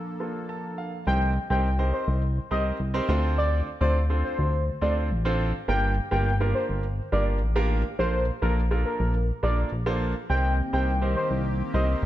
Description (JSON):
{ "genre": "pop", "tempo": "104 BPM", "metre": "4/4", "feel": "straight", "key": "C dorian", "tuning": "A4 = 442 Hz", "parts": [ { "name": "clear baby grand piano", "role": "accompaniment", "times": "0.0-12.0 s", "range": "Bb3 to A5", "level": "-30 LUFS", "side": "right 2 dB", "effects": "none" }, { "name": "sweeping resonant pad", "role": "sustained chords", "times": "0.0-1.0, 10.3-12.1 s", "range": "Eb3 to A4", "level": "-34 LUFS", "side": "left 2 dB", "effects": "chorus" }, { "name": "octave-doubled lead", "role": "melody", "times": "1.1-11.9 s", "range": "Bb4 to G5", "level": "-29 LUFS", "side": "equal", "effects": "chorus, digital delay" }, { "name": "chorused synth bass", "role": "bass", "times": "1.1-12.1 s", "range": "G1 to D2", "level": "-25 LUFS", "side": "equal", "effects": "none" } ], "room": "light reverb", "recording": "none", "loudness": "-23 LUFS", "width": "side -13 dB against mid", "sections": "0.0-1.1 A section; 1.1-12.1 B section", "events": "grand piano fill 0.2-1.1; drop 1.1-12.1", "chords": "0.0 Bbmaj7; 1.1 Cm7; 3.1 Dm7; 5.7 Gm7; 8.0 Bbmaj7; 10.3 Cm7" }